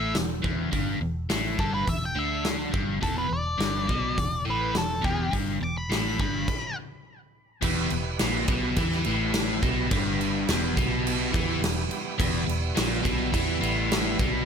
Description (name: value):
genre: blues rock power trio and southern rock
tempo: 105 BPM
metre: 4/4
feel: straight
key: E minor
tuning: A4 = 440 Hz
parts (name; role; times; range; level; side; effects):
- octave-fuzz lead guitar; melody; 0.0-6.8 s; G4 to D6; -31 LUFS; equal; distortion
- biting overdriven guitar; riff; 0.0-14.5 s; E2 to E3; -28 LUFS; left 1 dB; none
- vintage muted fingered electric bass; bass; 0.0-14.5 s; E1 to E2; -31 LUFS; equal; none
- big rock drum kit; drums; 0.1-14.3 s; crash cymbal, hi-hat, kick drum, snare drum; -28 LUFS; equal; none
- overdriven tonewheel organ; sustained chords; 7.6-14.5 s; G3 to B4; -35 LUFS; right 6 dB; slow rotary speaker, chorus vibrato
room: light reverb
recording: none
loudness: -24 LUFS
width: side -7 dB against mid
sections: 0.0-7.6 A section; 7.6-14.5 B section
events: stop 6.5-7.6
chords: 0.0 Em